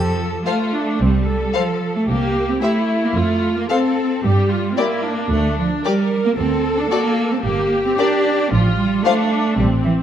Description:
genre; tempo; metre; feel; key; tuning
cinematic, playful, whimsical film cue; 112 BPM; 4/4; straight; F major; A4 = 441 Hz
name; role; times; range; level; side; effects
warm studio viola section; accompaniment; 0.0-10.0 s; C4 to Bb4; -22 LUFS; equal; none
rich studio double bass section; bass; 0.0-10.0 s; G1 to G2; -21 LUFS; right 1 dB; none
warm studio cello section; bass; 0.0-9.9 s; E3 to D4; -19 LUFS; right 2 dB; none
rich studio violin section; melody; 0.5-9.1 s; D5 to F5; -26 LUFS; left 4 dB; none
dark studio violin section; second line; 0.5-9.1 s; F4 to C5; -25 LUFS; left 4 dB; none
room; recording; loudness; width
moderate scoring stage reverb, RT60 1.5 s; dark, warm production; -16 LUFS; side -10 dB against mid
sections
0.0-10.0 A section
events
none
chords
0.0 F; 2.1 C7; 3.2 F; 4.2 Gm; 6.4 D7(no3); 7.4 Gm; 8.5 F/A

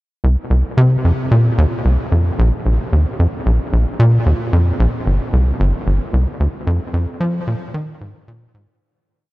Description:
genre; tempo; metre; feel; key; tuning
ambient; 112 BPM; 4/4; straight; unclear; A4 = 441 Hz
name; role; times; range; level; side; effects
tight sequencer bass; solo; 0.2-8.7 s; G1 to F3; -14 LUFS; equal; analog delay
room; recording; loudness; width
moderate huge ambient reverb, RT60 7.1 s; worn, warbling old tape, cassette tape, warbly pitch drift; -14 LUFS; side -18 dB against mid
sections
0.2-8.8 A section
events
fade-out 6.0-8.8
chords
none

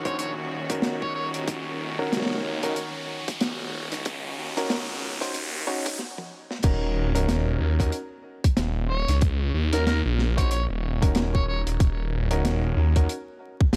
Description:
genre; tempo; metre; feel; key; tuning
glitch hop; 93 BPM; 4/4; swing 59% on 16ths; Eb minor; A4 = 440 Hz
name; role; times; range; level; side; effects
overdriven harmonica; melody; 0.0-1.3, 8.9-11.6 s; Bb4 to Db5; -35 LUFS; equal; vintage 12-bit sampler grit, digital delay
bright chamber string section; sustained chords; 0.0-6.0 s; Eb3 to Gb4; -38 LUFS; equal; sidechain pumping
phased detuned saw bass; bass; 0.0-13.8 s; Eb1 to Eb2; -28 LUFS; equal; phaser, high-pass filter
riser; sound effects; 0.0-6.0 s; none; -37 LUFS; equal; none
clear grand piano; stabs; 0.1-13.1 s; Db4 to Db5; -34 LUFS; equal; sidechain pumping, low-pass filter, digital delay
deep reggae drum kit; drums; 0.1-13.8 s; crash cymbal, hi-hat, snare drum, toms; -32 LUFS; equal; studio reverb
electronic kick drum; drums; 0.1-13.7 s; none; -24 LUFS; equal; overdrive, high-pass filter on kick, studio reverb
room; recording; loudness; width
small room ambience; vinyl crackle, high-pass filter; -26 LUFS; mono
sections
0.0-6.6 A section; 6.6-13.8 B section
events
build-up 0.0-6.6; riser 0.0-6.0; filter sweep on grand piano 0.0-6.6; filter sweep 0.0-6.6; break 6.0-6.6; drum fill 6.0-6.6; drop 6.6-13.8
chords
0.0 Ebm7

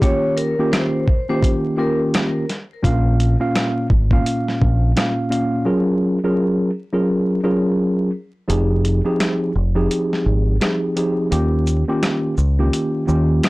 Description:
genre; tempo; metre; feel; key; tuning
hip hop, boom-bap hip-hop; 85 BPM; 4/4; swing 62% on 16ths; F minor; A4 = 440 Hz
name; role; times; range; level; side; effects
vibraphone with hard mallets; melody; 0.0-2.0 s; Bb4 to Db5; -24 LUFS; left 1 dB; high-pass filter, low-pass filter, digital delay
mellow tine electric piano; accompaniment; 0.0-13.5 s; Bb2 to F5; -19 LUFS; equal; medium stereo tremolo, high-pass filter, low-pass filter
dusty soul sampler-style drum kit; drums; 0.0-13.5 s; hi-hat, kick drum, rim click, shaker, snare drum; -20 LUFS; equal; none
deep dub fingered electric bass; bass; 2.8-13.4 s; F1 to Eb2; -17 LUFS; equal; tube saturation
room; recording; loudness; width
moderate small room reverb, RT60 0.5 s; blown-out, overdriven recording, vinyl crackle, overdrive; -16 LUFS; side -21 dB against mid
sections
0.0-8.5 A section; 8.5-13.5 B section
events
kick muted 8.5-13.5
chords
0.0 Eb7; 2.8 Bbm; 5.7 Gbmaj7; 8.5 Fm7; 11.3 Eb7

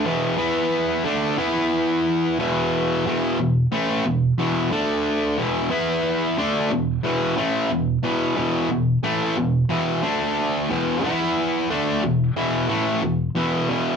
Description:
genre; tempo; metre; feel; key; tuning
rock; 90 BPM; 4/4; straight; unclear; A4 = 440 Hz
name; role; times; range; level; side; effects
distorted electric guitar; solo; 0.0-14.0 s; E2 to E4; -19 LUFS; equal; distortion
room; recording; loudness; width
wet studio reverb, RT60 0.5 s; band playing live in one room; -19 LUFS; side -6 dB against mid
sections
0.0-14.0 A section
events
none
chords
0.1 E5; 4.7 D5; 5.4 E5; 10.0 D5; 10.7 E5

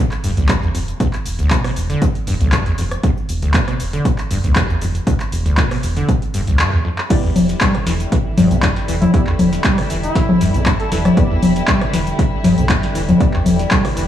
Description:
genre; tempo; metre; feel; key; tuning
acid house; 118 BPM; 4/4; swing 53% on 16ths; E minor; A4 = 439 Hz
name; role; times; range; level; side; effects
acid bass, saw; riff; 0.0-14.0 s; D2 to G3; -20 LUFS; equal; overdrive, analog chorus, analog delay
booming analog drum machine; drums; 0.1-14.1 s; congas, crash cymbal, handclaps, hi-hat, rim click, shaker, snare drum; -18 LUFS; left 2 dB; none
round analog bass; bass; 0.2-14.1 s; E1 to B1; -21 LUFS; equal; sidechain pumping
electronic kick drum; drums; 0.5-13.8 s; none; -18 LUFS; equal; none
dark studio string section; sustained chords; 7.1-14.1 s; D3 to E4; -27 LUFS; left 1 dB; sidechain pumping
deep mellow chord stab; stabs; 7.1-13.4 s; B3 to D5; -26 LUFS; equal; chorus, analog delay
warbly tape-like pad; texture; 7.5-14.1 s; A4 to G5; -30 LUFS; left 1 dB; chorus, built-in reverb, phaser, sidechain pumping
trumpet with bucket mute; melody; 9.0-11.0 s; E4 to A4; -27 LUFS; right 1 dB; tape echo
room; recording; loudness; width
light reverb; dry, gritty hardware recording, small room ambience; -14 LUFS; side -11 dB against mid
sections
0.0-7.1 A section; 7.1-14.1 B section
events
drum fill 6.6-7.1; drop 7.1-14.1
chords
0.0 E7(no3); 7.1 Em7

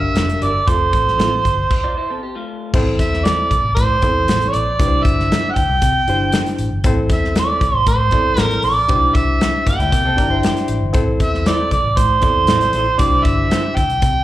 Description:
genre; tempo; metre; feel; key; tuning
uptempo 1960s-style soul; 117 BPM; 4/4; straight; unclear; A4 = 435 Hz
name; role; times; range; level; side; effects
overdriven harmonica; melody; 0.0-14.2 s; C5 to G5; -17 LUFS; right 3 dB; plate reverb, slapback echo, tape echo
barky reed electric piano; accompaniment; 0.0-13.8 s; C4 to D5; -23 LUFS; left 2 dB; overdrive, plate reverb, slapback echo
vintage muted fingered electric bass; bass; 0.0-14.2 s; F1 to C3; -20 LUFS; equal; none
electric guitar through a small old amp; stabs; 0.2-1.3, 11.5-13.6 s; C4 to C5; -26 LUFS; right 3 dB; plate reverb, slapback echo
natural country drum kit; drums; 0.2-14.1 s; crash cymbal, hi-hat, kick drum, snare drum; -19 LUFS; equal; none
electric guitar through a small old amp; riff; 1.8-2.7, 9.7-10.9 s; G3 to D5; -26 LUFS; left 5 dB; spring reverb, slapback echo
room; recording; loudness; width
moderate club reverb, RT60 0.7 s; live gig heard through the venue's PA, club reverb; -14 LUFS; side -14 dB against mid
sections
0.0-2.7 A section; 2.7-14.2 B section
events
stop 1.7-2.7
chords
0.0 Gm; 0.7 F; 2.7 Am; 4.8 Cadd9; 6.8 Am; 8.9 Cadd9; 10.9 Am; 13.0 Cadd9

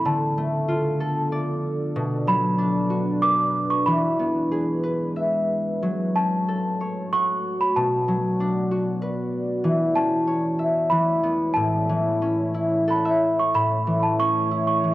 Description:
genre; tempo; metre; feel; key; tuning
children's music, lullaby; 93 BPM; 3/4; rubato; A major; A4 = 439 Hz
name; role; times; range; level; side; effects
celesta; melody; 0.0-14.9 s; A5 to D6; -24 LUFS; right 2 dB; none
concert harp; accompaniment; 0.0-14.9 s; A2 to F#5; -23 LUFS; left 1 dB; none
deep dark ambient pad; sustained chords; 0.0-14.9 s; F3 to D5; -29 LUFS; equal; chorus, built-in reverb
room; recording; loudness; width
moderate concert hall reverb, RT60 2.2 s; worn, warbling old tape, cassette tape, warbly pitch drift; -20 LUFS; side -15 dB against mid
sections
0.0-13.5 A section; 13.5-14.9 B section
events
harp fill 12.5-13.5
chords
0.1 Dm; 2.0 Bm; 3.9 E; 5.8 F#m; 7.8 Bm; 9.6 A/E; 10.9 E7; 11.6 A

